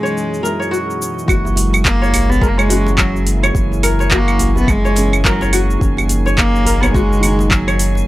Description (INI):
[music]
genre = organic downtempo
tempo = 106 BPM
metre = 4/4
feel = swing 59% on 16ths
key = F# mixolydian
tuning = A4 = 442 Hz
[part]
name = rich cello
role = melody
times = 0.0-8.0 s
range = F#3 to B3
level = -20 LUFS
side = equal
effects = analog delay
[part]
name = felt-muted upright piano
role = accompaniment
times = 0.0-8.1 s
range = D#3 to E4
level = -25 LUFS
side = right 1 dB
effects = sidechain pumping, analog delay
[part]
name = warm analog pad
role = sustained chords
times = 0.0-8.1 s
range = F#2 to G#4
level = -25 LUFS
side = equal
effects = chorus, sidechain pumping
[part]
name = kora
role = arpeggios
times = 0.0-8.1 s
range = F#4 to C#5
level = -22 LUFS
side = left 1 dB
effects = analog delay
[part]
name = drifting glass-harmonics texture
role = texture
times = 0.0-8.1 s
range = D#4 to G#5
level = -32 LUFS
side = right 1 dB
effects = chorus, built-in reverb
[part]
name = afro-pop drum kit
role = drums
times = 0.1-8.1 s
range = cabasa, claves, handclaps, hi-hat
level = -18 LUFS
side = right 1 dB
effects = overdrive, small room ambience
[part]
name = warm sub bass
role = bass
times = 1.3-8.0 s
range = F#1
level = -17 LUFS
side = equal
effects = tube saturation, sidechain pumping
[part]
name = electronic kick drum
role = drums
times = 1.3-7.6 s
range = none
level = -18 LUFS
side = equal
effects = overdrive, small room ambience
[part]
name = djembe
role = percussion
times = 1.4-8.0 s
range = none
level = -27 LUFS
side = equal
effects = none
[sound]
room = little or no reverb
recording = dry, gritty hardware recording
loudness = -12 LUFS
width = side -16 dB against mid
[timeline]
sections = 0.0-1.3 A section; 1.3-8.1 B section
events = filter sweep on kora 0.0-1.3; filter sweep on felt piano 0.0-1.3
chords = 0.0 E6/F#; 1.3 F#9; 5.8 F#69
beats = 0.15 0.72 | 1.28 1.85 2.42 2.98 | 3.55 4.11 4.68 5.25 | 5.81 6.38 6.94 7.51